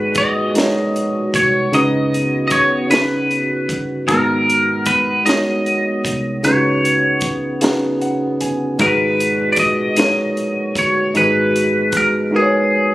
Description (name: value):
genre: slow six-eight R&B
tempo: 51 BPM (dotted quarters)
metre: 6/8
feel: straight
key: G# minor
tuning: A4 = 442 Hz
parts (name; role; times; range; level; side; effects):
- twangy electric guitar; melody; 0.0-12.9 s; G#4 to D#5; -17 LUFS; equal; phaser
- tine electric piano; accompaniment; 0.0-12.9 s; C#3 to G#5; -18 LUFS; equal; overdrive
- hollow soft pad; sustained chords; 0.0-12.9 s; A#2 to F#4; -27 LUFS; equal; chorus
- vintage muted fingered electric bass; bass; 0.0-12.9 s; G1 to C#2; -29 LUFS; equal; none
- compact cocktail drum kit; drums; 0.1-12.1 s; hi-hat, kick drum, snare drum; -21 LUFS; equal; none
room: light reverb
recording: recorded on a phone in the room, studio ambience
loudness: -14 LUFS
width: side -16 dB against mid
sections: 0.0-12.9 A section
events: tine electric piano fill 7.6-8.8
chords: 0.0 G#m9; 1.7 C#7sus4; 4.1 G#m9; 6.4 C#7sus4; 8.8 G#m9